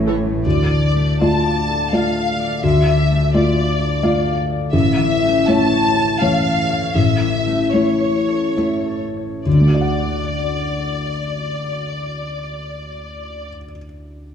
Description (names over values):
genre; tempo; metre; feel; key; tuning
cinematic; 66-87 BPM; 3/4; rubato; unclear; A4 = 441 Hz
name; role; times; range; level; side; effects
felt-muted upright piano; accompaniment; 0.0-14.3 s; A1 to F#5; -19 LUFS; equal; none
concert harp; arpeggios; 0.0-13.8 s; A2 to C#6; -22 LUFS; left 5 dB; none
clear studio violin section; melody; 0.1-13.5 s; C#5 to A5; -22 LUFS; left 2 dB; none
room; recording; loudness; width
wet scoring stage reverb, RT60 2.0 s; dark, warm production; -15 LUFS; side -8 dB against mid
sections
0.4-9.5 A section; 9.5-14.3 B section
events
slowing down 3.7-9.5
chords
0.4 Dm; 4.7 A; 9.5 D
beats
| 0.44 1.20 1.92 | 2.63 3.33 4.03 | 4.73 5.48 6.21 | 6.95 7.73 8.56 | 9.46 10.33 11.20 | 12.06 12.93 13.80